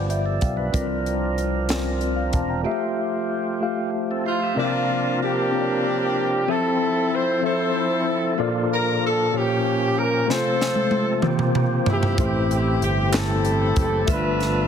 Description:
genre	slow gospel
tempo	63 BPM (dotted quarters)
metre	6/8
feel	straight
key	F major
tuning	A4 = 440 Hz
part	mellow tine electric piano	accompaniment	0.0-14.7 s	G2 to Bb5	-25 LUFS	left 3 dB	medium stereo tremolo
part	percussive tonewheel organ	sustained chords	0.0-14.7 s	C3 to E5	-28 LUFS	right 2 dB	slow rotary speaker, overdrive
part	fingered electric bass	bass	0.0-2.6, 12.2-14.7 s	E1 to C2	-25 LUFS	right 1 dB	none
part	crisp fusion drum kit	drums	0.1-2.5, 10.3-14.5 s	hi-hat, kick drum, snare drum, toms	-24 LUFS	right 1 dB	none
part	warm horn section	melody	4.3-14.7 s	Bb3 to C5	-23 LUFS	equal	none
part	group handclap	percussion	13.1-13.4 s	none	-32 LUFS	right 5 dB	none
room	light reverb, small room ambience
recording	heavily compressed radio sound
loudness	-20 LUFS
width	side -8 dB against mid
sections	0.0-4.6 A section; 4.6-14.7 B section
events	tine electric piano fill 0.0-0.7; drum fill 10.3-12.2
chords	0.0 G7; 0.7 C9sus4; 2.7 Fmaj9; 4.6 C9sus4; 6.5 Fmaj7; 8.4 Bbmaj7; 9.3 Bbm6; 10.3 F/C; 11.2 C7sus4; 12.2 Am7; 14.1 G13

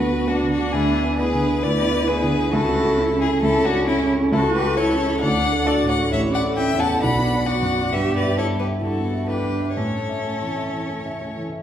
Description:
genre	quick classical-period movement for piano quartet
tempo	133 BPM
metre	4/4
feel	rubato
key	A major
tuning	A4 = 438 Hz
part	rich violin	melody	0.0-11.4 s	E4 to B5	-24 LUFS	left 3 dB	none
part	dark cello	second line	0.0-11.4 s	B3 to G4	-26 LUFS	right 3 dB	none
part	rich violin	second line	0.0-11.5 s	C#4 to F#5	-28 LUFS	left 2 dB	none
part	dark grand piano	accompaniment	0.0-11.6 s	A1 to E5	-22 LUFS	right 1 dB	none
room	wet recital hall reverb, RT60 1.7 s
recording	heard from further back in the room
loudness	-18 LUFS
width	side -10 dB against mid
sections	0.0-11.6 A section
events	none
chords	0.0 Bm/D; 0.7 E7/D; 2.5 A/C#; 5.2 D; 6.1 A; 7.0 Bm; 7.9 Em/G; 9.8 A

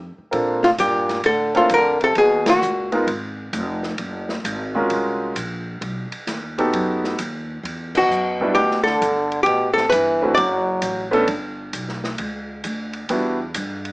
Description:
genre	jazz, small-group swing and bop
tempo	132 BPM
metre	4/4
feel	swing 67% on 8ths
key	unclear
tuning	A4 = 442 Hz
part	upright bass	bass	0.0-13.9 s	F1 to Bb2	-30 LUFS	equal	none
part	warm grand piano	accompaniment	0.3-13.4 s	G3 to A#4	-20 LUFS	right 1 dB	none
part	open jazz drum kit	drums	0.3-13.9 s	crash cymbal, hi-hat, kick drum, ride cymbal, snare drum	-29 LUFS	equal	none
part	archtop guitar, miked and amplified	melody	0.6-2.9, 8.0-11.1 s	F4 to D5	-17 LUFS	equal	none
part	clear trombone	second line	0.6-2.9, 7.9-11.1 s	A2 to F#3	-23 LUFS	equal	none
room	light reverb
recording	small speaker sound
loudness	-18 LUFS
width	side -24 dB against mid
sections	0.3-13.9 A section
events	band accent 2.4, 7.9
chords	0.3 Bbmaj7; 2.2 G#m11; 3.1 Fm; 4.0 F#maj9; 5.8 B7b13; 7.6 Em9; 9.5 Am9; 10.4 D; 11.3 G; 13.1 Em7

